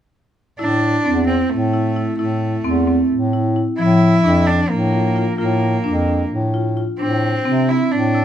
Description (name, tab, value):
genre	contemporary instrumental, contemporary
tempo	262 BPM (eighths)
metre	7/8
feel	straight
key	A phrygian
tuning	A4 = 440 Hz
part	clear cello	melody	0.6-8.2 s	A3 to E4	-21 LUFS	right 2 dB	none
part	marimba with medium mallets	arpeggios	0.6-8.2 s	F3 to F4	-18 LUFS	equal	none
part	warm bass clarinet	bass	0.6-8.2 s	E2 to C3	-20 LUFS	equal	none
room	moderate studio reverb, RT60 0.5 s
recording	heard from further back in the room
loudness	-15 LUFS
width	side -10 dB against mid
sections	0.6-8.2 A section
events	none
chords	0.6 Am; 3.8 Bbmaj7; 7.0 F/A (rootless)